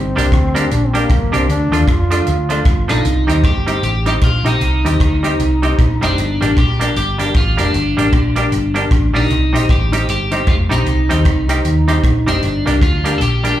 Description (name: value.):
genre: ska.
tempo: 154 BPM.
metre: 4/4.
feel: swing 61% on 8ths.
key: G minor.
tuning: A4 = 440 Hz.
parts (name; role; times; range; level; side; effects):
warm trombone; melody; 0.0-2.9 s; Bb3 to F4; -22 LUFS; equal; dub echo, plate reverb, slapback echo.
hollow-body short-scale fingered electric bass; bass; 0.0-13.5 s; F1 to F2; -16 LUFS; equal; none.
semi-hollow electric guitar; accompaniment; 0.2-13.5 s; F3 to G4; -22 LUFS; right 3 dB; plate reverb, slapback echo.
dark upright piano; stabs; 0.2-13.6 s; D4 to Eb5; -23 LUFS; left 3 dB; plate reverb, slapback echo.
swinging big-band drum kit; drums; 0.2-13.5 s; hi-hat, kick drum, rim click; -18 LUFS; equal; dub echo.
electric guitar at the edge of break-up; melody; 2.9-13.6 s; D4 to A4; -19 LUFS; equal; lush chorus, dub echo, plate reverb, slapback echo.
room: little or no reverb.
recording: live gig heard through the venue's PA, club reverb.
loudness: -12 LUFS.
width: side -12 dB against mid.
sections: 0.0-3.1 A section; 3.1-13.6 B section.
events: trombone solo 0.0-3.1.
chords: 0.0 Gm; 1.5 Dm; 3.1 Cm; 6.2 Gm; 9.3 Cm; 12.4 Gm.